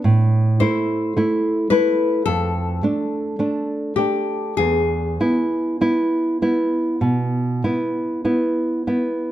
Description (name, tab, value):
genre	romantic duo for nylon-string guitar and classical guitar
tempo	48-56 BPM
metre	4/4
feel	rubato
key	unclear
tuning	A4 = 440 Hz
part	nylon-string guitar	accompaniment	0.0-9.3 s	E2 to E4	-19 LUFS	right 1 dB	none
part	nylon-string guitar	melody	0.6-8.8 s	G4 to C5	-22 LUFS	left 5 dB	none
room	light reverb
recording	close, detailed microphones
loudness	-18 LUFS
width	side -12 dB against mid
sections	0.0-9.3 A section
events	none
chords	0.1 Am; 2.3 Dm/F; 4.6 E